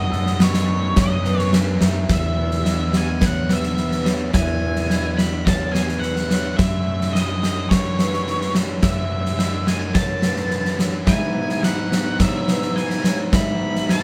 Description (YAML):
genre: post-rock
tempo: 107 BPM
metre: 4/4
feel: straight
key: E major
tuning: A4 = 440 Hz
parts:
  - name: octave-fuzz lead guitar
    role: melody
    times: 0.0-14.0 s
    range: C#5 to B5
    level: -30 LUFS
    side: equal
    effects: distortion
  - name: pedal steel guitar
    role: sustained chords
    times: 0.0-2.1, 11.1-14.0 s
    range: D#3 to B4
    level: -38 LUFS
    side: equal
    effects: none
  - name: electric guitar at the edge of break-up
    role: arpeggios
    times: 0.0-14.0 s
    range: E2 to A4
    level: -34 LUFS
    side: equal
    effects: none
  - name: vibraphone with hard mallets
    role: arpeggios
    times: 0.0-14.0 s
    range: B4 to F#5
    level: -33 LUFS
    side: equal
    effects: none
  - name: fuzz fingered electric bass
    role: bass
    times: 0.0-14.0 s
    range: E2 to G#2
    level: -26 LUFS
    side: equal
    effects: overdrive
  - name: huge arena drum kit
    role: drums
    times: 0.1-14.0 s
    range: kick drum, snare drum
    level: -22 LUFS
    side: equal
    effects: none
room: light reverb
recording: band playing live in one room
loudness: -20 LUFS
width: mono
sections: 0.0-2.1 A section; 2.1-14.0 B section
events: none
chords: 0.0 B7/F#; 2.1 E; 6.6 F#m7; 11.1 E/G#